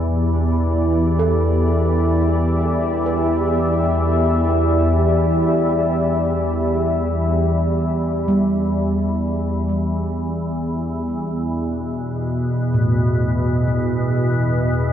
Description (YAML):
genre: dark ambient drone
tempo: free time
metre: none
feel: none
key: E minor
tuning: A4 = 438 Hz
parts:
  - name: deep dark ambient pad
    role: sustained chords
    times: 0.0-11.5 s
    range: E3 to E5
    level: -21 LUFS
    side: equal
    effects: chorus, built-in reverb
  - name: gamelan-type bossed gongs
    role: arpeggios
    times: 0.0-14.9 s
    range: A2 to B4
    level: -25 LUFS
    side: right 1 dB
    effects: diffuse ambient delay
  - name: organ-like drone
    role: drone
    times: 0.0-14.9 s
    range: E2 to B2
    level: -19 LUFS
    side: equal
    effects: ensemble chorus, built-in reverb
room: wet huge ambient reverb, RT60 8.1 s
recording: none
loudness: -17 LUFS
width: side -9 dB against mid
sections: 0.0-11.5 A section; 11.5-14.9 B section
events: none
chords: 0.0 Em7; 11.5 Em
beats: free time